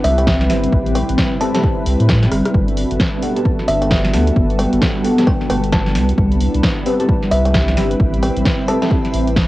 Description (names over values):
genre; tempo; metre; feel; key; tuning
UK garage, two-step garage; 132 BPM; 4/4; swing 61% on 16ths; G major; A4 = 441 Hz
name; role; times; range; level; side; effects
kalimba; melody; 0.0-8.9 s; E5 to A5; -22 LUFS; equal; cassette tape
warm analog pad; sustained chords; 0.0-9.5 s; C4 to B4; -25 LUFS; equal; chorus, sidechain pumping, cassette tape
saturated sub bass; bass; 0.0-9.5 s; G1 to A2; -18 LUFS; equal; none
punchy analog drum machine; drums; 0.0-9.5 s; hi-hat, rim click, snare drum; -22 LUFS; equal; cassette tape
granular cloud pad; texture; 0.0-9.5 s; G3 to B5; -21 LUFS; equal; built-in reverb, sidechain pumping, cassette tape
electronic kick drum; drums; 0.3-9.5 s; none; -18 LUFS; equal; overdrive, cassette tape
deep mellow chord stab; stabs; 0.5-8.9 s; B3 to A5; -22 LUFS; equal; chorus, phaser, cassette tape
room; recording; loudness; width
light reverb, digital ambience; home recording on cassette; -13 LUFS; side -17 dB against mid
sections
0.0-9.5 A section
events
drum fill 2.3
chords
0.0 Cmaj7; 0.7 Am7; 2.5 Gmaj9; 6.0 Cmaj7; 8.0 Am7